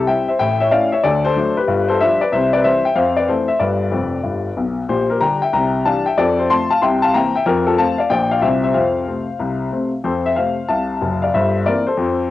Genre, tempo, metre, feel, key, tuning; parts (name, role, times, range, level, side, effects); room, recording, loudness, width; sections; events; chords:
jazz, stride piano; 186 BPM; 4/4; swing 65% on 8ths; F major from 4.9 s; A4 = 441 Hz
clear upright piano; solo; 0.0-12.3 s; F1 to C6; -15 LUFS; left 2 dB; cassette tape
moderate spring reverb, RT60 1.1 s, small room ambience; home recording on cassette; -15 LUFS; side -14 dB against mid
0.0-10.0 A section; 10.0-12.3 B section
upright piano fill 3.9-4.9
0.4 A; 1.0 D7; 1.7 G7; 2.3 C; 3.0 Fmaj7; 3.6 G; 4.9 Gm/Bb; 5.5 C9; 6.2 F; 6.8 C7; 7.5 F; 8.1 Bb6; 8.4 C; 8.8 F; 11.3 C7/G